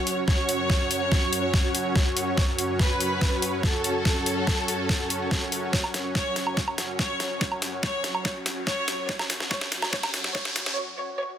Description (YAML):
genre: heavy wobble dubstep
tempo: 143 BPM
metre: 4/4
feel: half-time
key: F# minor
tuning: A4 = 440 Hz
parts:
  - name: warm symphonic violin section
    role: melody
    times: 0.0-11.4 s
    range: A4 to C#5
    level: -30 LUFS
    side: equal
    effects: digital delay
  - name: supersaw pad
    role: sustained chords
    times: 0.0-10.7 s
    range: F#2 to C#5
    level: -33 LUFS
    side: right 1 dB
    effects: sidechain pumping
  - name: ethereal airy pad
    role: texture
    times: 0.0-10.8 s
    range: C#4 to C#6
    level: -33 LUFS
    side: equal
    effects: ensemble chorus, built-in reverb, tremolo, sidechain pumping
  - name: dubstep drum kit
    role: drums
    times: 0.1-10.7 s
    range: hi-hat, snare drum, woodblock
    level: -28 LUFS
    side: equal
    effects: overdrive, high-pass filter on hats, high-pass filter on snare, high-pass filter on perc
  - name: electronic kick drum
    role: drums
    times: 0.3-10.4 s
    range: none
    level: -25 LUFS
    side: equal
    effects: overdrive
  - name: riser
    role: sound effects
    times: 7.3-10.8 s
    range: none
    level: -36 LUFS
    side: equal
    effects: none
room: light reverb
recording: dense, heavily limited modern master, high-pass filter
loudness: -23 LUFS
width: side -10 dB against mid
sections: 0.0-11.4 A section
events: build-up 0.0-11.4; drum fill 0.0-10.8; filter sweep 0.0-11.4; riser 7.3-10.8; break 10.8-11.4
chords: 0.0 F#5